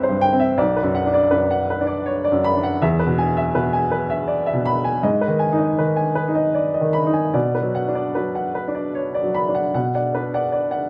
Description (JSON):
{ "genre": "neoclassical minimalist piano", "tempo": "74-82 BPM", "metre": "3/4", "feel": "rubato", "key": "B dorian", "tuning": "A4 = 440 Hz", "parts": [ { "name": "clear upright piano", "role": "solo", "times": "0.0-10.9 s", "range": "B1 to B5", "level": "-20 LUFS", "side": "equal", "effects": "none" } ], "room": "wet studio reverb, RT60 0.7 s", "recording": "none", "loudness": "-20 LUFS", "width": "mono", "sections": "0.0-9.7 A section; 9.7-10.9 B section", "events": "none", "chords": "0.0 C; 0.6 Bm; 2.8 E; 5.0 G#m; 7.3 Bm", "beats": "| 0.57 1.31 2.06 | 2.81 3.55 4.29 | 5.04 5.79 6.56 | 7.34 8.15 8.95 | 9.74 10.51" }